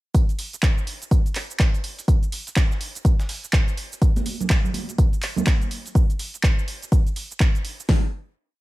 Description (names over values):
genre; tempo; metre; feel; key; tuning
house; 124 BPM; 4/4; swing 60% on 16ths; none; none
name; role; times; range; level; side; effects
breakbeat sampler-style drum kit; drums; 0.1-5.9 s; hi-hat, snare drum, tambourine; -39 LUFS; right 1 dB; none
deep house drum kit; drums; 0.1-8.0 s; hi-hat, kick drum, snare drum; -18 LUFS; equal; none
punchy analog drum machine; drums; 0.1-7.9 s; handclaps, hi-hat, shaker; -29 LUFS; right 1 dB; overdrive
congas; percussion; 4.2-5.5 s; none; -27 LUFS; right 4 dB; none
room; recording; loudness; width
digital ambience; none; -20 LUFS; side -18 dB against mid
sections
0.1-7.9 drop; 7.9-8.6 final hit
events
drop 0.1-7.9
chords
none